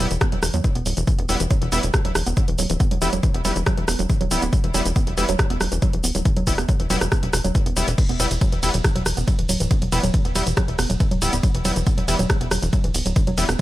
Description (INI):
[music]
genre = driving peak-time techno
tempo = 139 BPM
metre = 4/4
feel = straight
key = E minor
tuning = A4 = 440 Hz
[part]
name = woody wave-folded pluck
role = riff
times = 0.0-13.6 s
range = E3 to B3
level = -27 LUFS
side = right 1 dB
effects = chorus, sidechain pumping, ping-pong delay
[part]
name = sync-sweep polysynth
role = stabs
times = 0.0-13.4 s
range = G3 to E4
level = -27 LUFS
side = left 1 dB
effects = chorus, sidechain pumping, digital delay
[part]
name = tight sequencer bass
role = bass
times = 0.0-13.6 s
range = D1 to E2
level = -24 LUFS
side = equal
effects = sidechain pumping
[part]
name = punchy analog drum machine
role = drums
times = 0.0-13.6 s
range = crash cymbal, hi-hat, ride cymbal, rim click, shaker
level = -26 LUFS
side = right 1 dB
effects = none
[part]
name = electronic kick drum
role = drums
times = 0.2-13.6 s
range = none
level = -20 LUFS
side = equal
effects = none
[sound]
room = digital ambience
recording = none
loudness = -18 LUFS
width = side -16 dB against mid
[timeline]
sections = 0.0-13.6 A section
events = none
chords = 0.0 Em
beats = 0.21 0.64 | 1.07 1.51 1.94 2.37 | 2.80 3.23 3.66 4.10 | 4.53 4.96 5.39 5.82 | 6.25 6.69 7.12 7.55 | 7.98 8.41 8.84 9.28 | 9.71 10.14 10.57 11.00 | 11.43 11.87 12.30 12.73 | 13.16 13.59